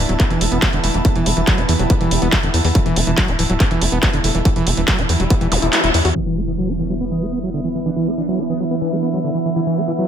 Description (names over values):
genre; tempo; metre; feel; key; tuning
psychedelic trance; 141 BPM; 4/4; straight; E minor; A4 = 441 Hz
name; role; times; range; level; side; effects
overtone-sweeping drone; sustained chords; 0.0-10.1 s; E3 to B3; -24 LUFS; right 4 dB; chorus, built-in reverb, sidechain pumping
overdriven acid bass; riff; 0.0-10.1 s; D3 to F#4; -22 LUFS; moving between left 4 dB and right 5 dB; auto-pan, sidechain pumping, digital delay
tight sequencer bass; bass; 0.0-6.1 s; D1 to E2; -19 LUFS; equal; none
airy breathy pad; texture; 0.0-10.1 s; B3 to B5; -26 LUFS; equal; chorus, sidechain pumping
techno drum kit; drums; 0.1-6.2 s; crash cymbal, handclaps, hi-hat; -21 LUFS; equal; low-pass filter on hats, low-pass filter on snare, low-pass filter on cymbals, low-pass filter on room
electronic kick drum; drums; 0.2-5.4 s; none; -17 LUFS; equal; distortion
formant-sweep wobble bass; second line; 0.6-6.2 s; G3 to B3; -33 LUFS; left 4 dB; none
zap and impact; sound effects; 5.5-7.9 s; none; -25 LUFS; equal; none
sitar; melody; 6.2-10.1 s; E3 to E4; -31 LUFS; right 1 dB; phaser, sidechain pumping, digital delay
room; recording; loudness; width
light reverb; low-pass filter; -15 LUFS; side -9 dB against mid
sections
0.0-6.2 A section; 6.2-10.1 B section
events
kick drops out 5.7-6.2; band accent 5.7; impact 6.2-7.9; filter sweep on acid bass 6.2-10.1; filter sweep on synth drone 6.2-10.1; filter sweep 6.2-10.1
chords
0.0 E5